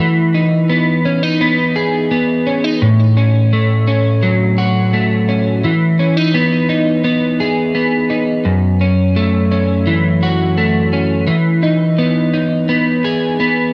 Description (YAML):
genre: dream pop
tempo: 85 BPM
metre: 4/4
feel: straight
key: E major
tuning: A4 = 439 Hz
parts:
  - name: electric guitar at the edge of break-up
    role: solo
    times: 0.0-13.7 s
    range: F#2 to G#4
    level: -14 LUFS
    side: equal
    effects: analog chorus, tape echo
room: moderate plate reverb, RT60 2.7 s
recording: rough home demo mix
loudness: -14 LUFS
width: mono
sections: 0.0-13.7 A section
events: none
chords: 0.0 Emaj7; 2.8 A6; 5.6 Emaj7; 8.5 F#m7; 11.3 Emaj7